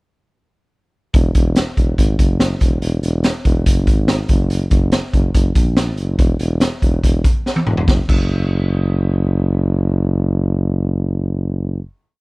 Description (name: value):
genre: jangly indie pop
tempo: 143 BPM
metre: 4/4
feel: straight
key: unclear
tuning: A4 = 440 Hz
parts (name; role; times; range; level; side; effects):
- mellow tuba; bass; 1.1-11.8 s; E1 to A#1; -17 LUFS; equal; none
- raw garage drum kit; drums; 1.1-8.2 s; crash cymbal, hi-hat, kick drum, snare drum, toms; -15 LUFS; equal; none
room: little or no reverb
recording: none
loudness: -14 LUFS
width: side -27 dB against mid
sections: 1.1-7.9 bridge; 7.9-11.2 final note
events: drum fill 7.5-7.9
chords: none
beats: | 1.14 1.56 1.98 2.40 | 2.82 3.24 3.66 4.08 | 4.50 4.93 5.35 5.77 | 6.19 6.61 7.03 7.45 | 7.87 8.29 8.72 9.14 | 9.56 9.98 10.40 10.82